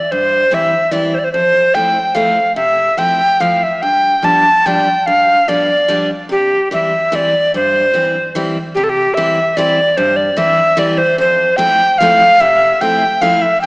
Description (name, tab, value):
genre	musette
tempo	146 BPM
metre	3/4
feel	straight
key	C major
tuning	A4 = 440 Hz
part	breathy bright tenor recorder	melody	0.0-13.7 s	G4 to A5	-11 LUFS	equal	none
part	picked steel-string acoustic guitar	accompaniment	0.1-13.7 s	F2 to E4	-20 LUFS	equal	none
room	moderate concert hall reverb, RT60 2.1 s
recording	small speaker sound, faint mains hum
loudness	-10 LUFS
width	side -27 dB against mid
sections	0.0-8.8 A section; 8.8-13.7 A section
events	none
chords	0.0 C; 1.3 Fmaj7; 3.8 G7; 6.3 C; 11.2 Fmaj7